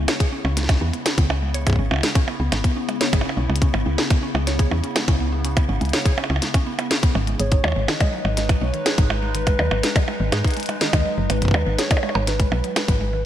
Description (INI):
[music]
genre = IDM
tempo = 123 BPM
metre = 4/4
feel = straight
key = C# minor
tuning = A4 = 437 Hz
[part]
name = warbly tape-like pad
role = sustained chords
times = 0.0-13.3 s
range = C#3 to B4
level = -30 LUFS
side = left 1 dB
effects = chorus, built-in reverb, phaser
[part]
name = mallet-like synth pluck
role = arpeggios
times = 0.0-13.2 s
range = D#3 to C#5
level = -30 LUFS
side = right 2 dB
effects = chorus, digital delay
[part]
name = woody FM bass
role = bass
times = 0.0-13.3 s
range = F#1 to G#2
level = -22 LUFS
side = equal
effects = tube saturation
[part]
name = glitchy drum kit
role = drums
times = 0.1-13.0 s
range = hi-hat, percussion blips, snare drum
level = -24 LUFS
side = right 1 dB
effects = none
[part]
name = electronic kick drum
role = drums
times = 0.2-13.0 s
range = none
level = -19 LUFS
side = equal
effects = none
[part]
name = warm velvety synth lead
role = melody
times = 7.4-13.2 s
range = B4 to D#5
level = -27 LUFS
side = equal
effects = chorus, digital delay
[sound]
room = light reverb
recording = bright 1980s-style digital production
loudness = -18 LUFS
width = side -11 dB against mid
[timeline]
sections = 0.0-13.3 A section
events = none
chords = 0.0 C#m7; 7.4 G#m